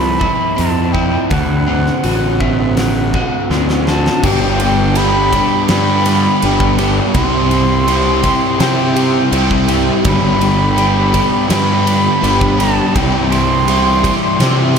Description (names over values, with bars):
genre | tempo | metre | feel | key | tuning
rock, shoegaze and dream pop | 83 BPM | 4/4 | straight | G major | A4 = 441 Hz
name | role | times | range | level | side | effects
bright reedy concert flute | melody | 0.0-14.8 s | E5 to C6 | -18 LUFS | equal | ping-pong delay
crunchy overdriven guitar | riff | 0.0-14.8 s | G2 to G4 | -15 LUFS | equal | wide subtle chorus
fuzz fingered electric bass | bass | 0.0-14.8 s | G1 to C3 | -17 LUFS | equal | overdrive
huge arena drum kit | drums | 0.2-14.8 s | crash cymbal, hi-hat, kick drum, ride cymbal, snare drum | -20 LUFS | equal | none
room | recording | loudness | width
moderate huge ambient reverb, RT60 4.4 s | dreamy mix soaked in reverb | -11 LUFS | side -6 dB against mid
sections
0.0-4.2 A section; 4.2-14.8 B section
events
drum fill 3.5-4.2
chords
0.0 F5; 1.3 D7; 4.2 G; 7.2 C; 10.1 G; 13.0 C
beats
0.58 | 1.31 2.05 2.78 3.51 | 4.24 4.97 5.70 6.42 | 7.15 7.88 8.60 9.33 | 10.05 10.78 11.50 12.23 | 12.95 13.68 14.40